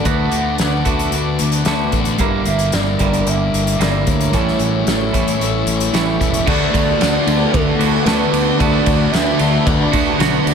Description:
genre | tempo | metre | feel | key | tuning
rock, shoegaze and dream pop | 112 BPM | 4/4 | straight | D major | A4 = 441 Hz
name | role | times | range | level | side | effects
hollow clarinet-like synth lead | melody | 0.0-10.2 s | A4 to F#5 | -24 LUFS | equal | chorus, tape echo
airy breathy pad | sustained chords | 0.0-10.5 s | A4 to D6 | -28 LUFS | equal | chorus
picked twelve-string acoustic guitar | arpeggios | 0.0-10.5 s | E4 to Bb4 | -29 LUFS | left 11 dB | analog chorus, tape echo
thick fuzz guitar | riff | 0.0-10.5 s | G2 to D4 | -21 LUFS | left 8 dB | distortion, wide subtle chorus
twangy electric guitar | riff | 0.0-10.5 s | G2 to F#4 | -21 LUFS | right 11 dB | reverse reverb
growling fingered electric bass | bass | 0.1-10.5 s | E1 to D2 | -21 LUFS | equal | overdrive
loose indie drum kit | drums | 0.1-10.5 s | crash cymbal, hi-hat, kick drum, ride cymbal, snare drum | -20 LUFS | equal | none
crunchy overdriven guitar | riff | 6.5-10.5 s | D3 to D4 | -21 LUFS | right 1 dB | phaser
room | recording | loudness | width
light reverb, studio reverb | none | -14 LUFS | side -6 dB against mid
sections
0.0-6.5 A section; 6.5-10.5 B section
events
none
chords
0.0 D6; 2.2 Gm6; 4.3 A7; 6.5 D6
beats
| 0.05 0.59 1.13 1.66 | 2.20 2.73 3.27 3.80 | 4.34 4.87 5.41 5.94 | 6.47 7.01 7.54 8.07 | 8.60 9.13 9.66 10.20

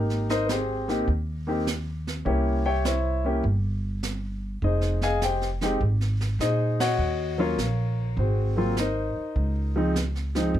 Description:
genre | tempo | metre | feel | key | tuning
jazz piano trio | 101 BPM | 4/4 | swing 68% on 8ths | Ab major | A4 = 440 Hz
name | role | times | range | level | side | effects
warm concert grand piano | melody | 0.0-10.5 s | F3 to Ab5 | -26 LUFS | left 1 dB | none
upright bass | bass | 0.0-10.6 s | F1 to Bb2 | -26 LUFS | equal | none
jazz brush drum kit | drums | 0.1-10.6 s | brushed snare drum, hi-hat, kick drum, ride cymbal, snare drum | -34 LUFS | right 3 dB | none
room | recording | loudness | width
light reverb | none | -23 LUFS | side -11 dB against mid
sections
0.0-10.6 A section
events
band accent 6.7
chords
0.0 Abmaj9; 2.3 C7b9; 4.6 Fm9; 7.0 Ebm9; 8.2 Ab9; 9.4 Dbmaj9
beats
0.49 1.08 1.67 | 2.26 2.85 3.44 4.03 | 4.62 5.21 5.80 6.40 | 6.99 7.58 8.17 8.77 | 9.36 9.95 10.54

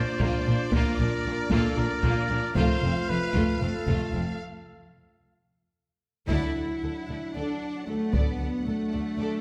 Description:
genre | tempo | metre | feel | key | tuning
cinematic, epic orchestral film score | 228 BPM (eighths) | 7/8 | straight | D major from 6.3 s | A4 = 439 Hz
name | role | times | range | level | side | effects
warm symphonic violin section | melody | 0.0-9.4 s | D5 to F#5 | -41 LUFS | equal | none
rich symphonic violin section | second line | 0.0-9.4 s | A3 to D5 | -40 LUFS | equal | none
mellow French horn section | sustained chords | 0.0-9.4 s | F#3 to F4 | -38 LUFS | equal | none
mellow trumpet | stabs | 0.0-4.4 s | A4 to C5 | -34 LUFS | equal | none
rich symphonic cello section | bass | 0.0-9.4 s | F2 to E4 | -33 LUFS | equal | none
rich symphonic double bass section | bass | 0.0-9.3 s | F1 to D2 | -33 LUFS | equal | none
rich symphonic viola section | accompaniment | 0.2-9.4 s | A3 to A4 | -35 LUFS | equal | none
taiko ensemble | drums | 0.2-8.6 s | none | -32 LUFS | equal | none
room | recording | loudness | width
moderate scoring stage reverb, RT60 1.6 s | none | -27 LUFS | mono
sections
0.0-6.3 A section; 6.3-9.4 B section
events
break 4.4-6.3; drum fill 5.5-6.3; band accent 6.3-6.8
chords
0.0 Bb; 2.6 F; 4.4 N.C.; 6.3 D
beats
0.21 0.47 | 0.73 0.99 1.25 1.51 1.78 2.04 2.30 | 2.56 2.82 3.09 3.35 3.61 3.88 4.15 | 4.42 4.69 4.96 5.22 5.49 5.76 6.03 | 6.30 6.56 6.83 7.09 7.36 7.62 7.88 | 8.14 8.40 8.67 8.93 9.19

